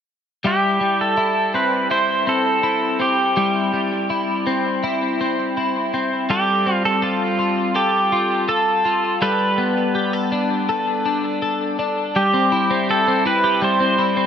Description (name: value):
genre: dream pop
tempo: 82 BPM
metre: 4/4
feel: straight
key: C major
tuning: A4 = 441 Hz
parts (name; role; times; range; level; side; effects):
- twelve-string electric guitar; arpeggios; 0.4-14.3 s; G3 to A4; -20 LUFS; left 2 dB; analog chorus, dub echo
- pedal steel guitar; melody; 0.5-14.3 s; F4 to C5; -20 LUFS; right 2 dB; dub echo
room: moderate plate reverb, RT60 2.8 s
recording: echo-heavy mix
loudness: -17 LUFS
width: side -8 dB against mid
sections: 0.4-12.1 A section; 12.1-14.3 B section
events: none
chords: 0.4 C; 6.3 Fadd9; 9.2 Gadd9; 12.1 C